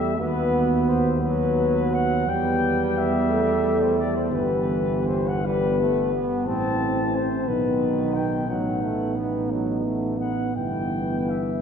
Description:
classical, hymn-like piece for brass band; 58 BPM (dotted quarters); 6/8; rubato; E minor; A4 = 438 Hz
mellow flugelhorn; melody; 0.0-11.6 s; B4 to A5; -27 LUFS; left 5 dB
mellow French horn section; second line; 0.0-11.6 s; D#4 to A4; -28 LUFS; right 4 dB
bright trombone; accompaniment; 0.0-11.6 s; D#3 to C4; -29 LUFS; right 3 dB
warm euphonium; accompaniment; 0.0-11.6 s; A3 to C4; -28 LUFS; left 2 dB
dark tuba; bass; 0.0-11.6 s; G1 to E2; -27 LUFS; right 2 dB
wet cathedral reverb, RT60 4.2 s; heard from further back in the room; -21 LUFS; side -7 dB against mid
0.0-11.6 A section
0.2 B/D#; 2.3 Em; 4.3 Em/G; 6.5 Am; 7.5 B; 8.5 B7/A; 10.6 Em/G

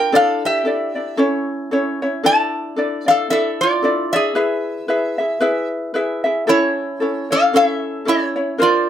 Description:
Hawaiian; 113 BPM; 4/4; swing 57% on 8ths; A4 = 441 Hz
metal-body resonator slide guitar; melody; 0.0-8.9 s; E4 to A5; -16 LUFS; equal
ukulele; accompaniment; 0.0-8.9 s; C#4 to E5; -19 LUFS; left 1 dB
moderate studio reverb, RT60 0.5 s; -16 LUFS; side -10 dB against mid
0.0-8.9 A section
0.1 Asus4; 1.2 A; 2.2 Asus4; 4.4 E; 6.5 A

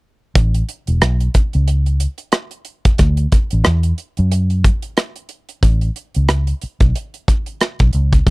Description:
lush 1970s-style soul; 91 BPM; 4/4; swing 58% on 16ths; A major; A4 = 440 Hz
vintage muted fingered electric bass; bass; 0.4-8.3 s; E1 to F#2; -15 LUFS; equal
modern studio drum kit; drums; 0.4-8.3 s; hi-hat, kick drum, rim click; -14 LUFS; equal
little or no reverb; dry, close 1970s-style studio recording; -14 LUFS; side -24 dB against mid
0.4-5.6 A section; 5.6-8.3 B section

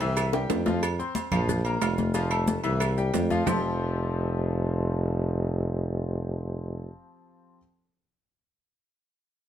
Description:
latin, salsa; 181 BPM; 4/4; straight; F major; A4 = 441 Hz
bright concert grand piano; accompaniment; 0.0-7.6 s; E3 to F6; -32 LUFS; left 4 dB
warm tuba; bass; 0.0-6.9 s; F1 to F2; -27 LUFS; right 1 dB
agogo bells and timbales; percussion; 0.0-3.5 s; -32 LUFS; right 8 dB
congas; percussion; 0.0-3.5 s; -30 LUFS; left 2 dB
cowbell and bongos; percussion; 0.0-3.5 s; -34 LUFS; left 5 dB
maracas; percussion; 0.0-3.5 s; -44 LUFS; right 7 dB
claves; percussion; 0.2-3.5 s; -39 LUFS; right 8 dB
light reverb; -24 LUFS; side -10 dB against mid
0.8-3.5 A section; 3.5-6.1 B section
drum fill 0.3-0.8
0.2 C; 0.8 F5; 1.5 Bb5; 2.1 F; 2.8 C; 3.5 Fadd9

